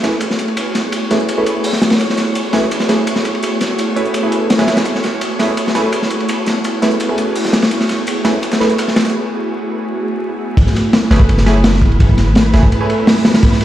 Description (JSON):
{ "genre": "drum and bass, jungle", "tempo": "168 BPM", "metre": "4/4", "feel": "straight", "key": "F# minor", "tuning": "A4 = 440 Hz", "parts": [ { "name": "ethereal airy pad", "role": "sustained chords", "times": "0.0-13.6 s", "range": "A3 to G#4", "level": "-19 LUFS", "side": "equal", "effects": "ensemble chorus, built-in reverb" }, { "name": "band-passed chord stab", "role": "stabs", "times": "0.0-8.7, 11.1-13.6 s", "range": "A3 to B4", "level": "-20 LUFS", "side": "right 2 dB", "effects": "chorus, phaser, dub echo" }, { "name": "crunchy breakbeat drum kit", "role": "drums", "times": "0.0-13.6 s", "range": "hi-hat, kick drum, ride cymbal, snare drum", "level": "-15 LUFS", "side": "equal", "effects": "high-pass filter on kick, high-pass filter on cymbals, high-pass filter on hats, high-pass filter on snare, high-pass filter on room" }, { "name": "dusty soul sampler-style drum kit", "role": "drums", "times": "0.0-9.1 s", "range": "hi-hat, snare drum", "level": "-30 LUFS", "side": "right 3 dB", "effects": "overdrive, high-pass filter on hats, high-pass filter on snare" }, { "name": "wind-like tuned noise texture", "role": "texture", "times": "0.0-13.6 s", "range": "B4 to C#6", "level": "-27 LUFS", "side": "left 1 dB", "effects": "built-in reverb" }, { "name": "long sustained 808-style bass", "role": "bass", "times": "10.6-12.7 s", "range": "F#1 to G#1", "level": "-13 LUFS", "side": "equal", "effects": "none" } ], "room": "moderate lush hall reverb, RT60 2.5 s", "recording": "played on a big sound system in a bare room, stone room reverb, vinyl crackle", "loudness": "-12 LUFS", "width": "side -12 dB against mid", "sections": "0.0-10.6 A section; 10.6-13.6 B section", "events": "filter sweep on ambient pad 0.0-10.6; break 9.1-10.6; drop 10.6-13.6", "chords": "0.0 F#m11", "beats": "0.21 | 0.57 0.93 1.28 1.64 | 2.00 2.36 2.71 3.07 | 3.43 3.79 4.14 4.50 | 4.86 5.21 5.57 5.93 | 6.29 6.64 7.00 7.36 | 7.71 8.07 8.43 8.79 | 9.14 9.50 9.86 10.21 | 10.57 10.93 11.29 11.64 | 12.00 12.36 12.71 13.07 | 13.43" }